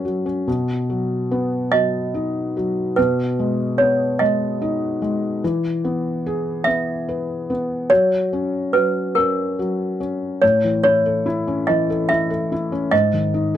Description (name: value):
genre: children's music, lullaby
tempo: 48 BPM (dotted quarters)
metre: 6/8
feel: straight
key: B major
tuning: A4 = 443 Hz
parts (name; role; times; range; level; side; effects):
- toy piano; melody; 0.0-13.6 s; A#4 to E5; -19 LUFS; right 2 dB; none
- felt-muted upright piano; accompaniment; 0.0-13.6 s; G#2 to B4; -21 LUFS; left 2 dB; none
room: light reverb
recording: dry, close 1970s-style studio recording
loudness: -18 LUFS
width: side -11 dB against mid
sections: 0.5-10.4 A section; 10.4-13.6 B section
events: none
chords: 0.5 B; 3.0 G#m/B; 5.4 E; 7.9 F#; 10.4 A; 12.9 G#5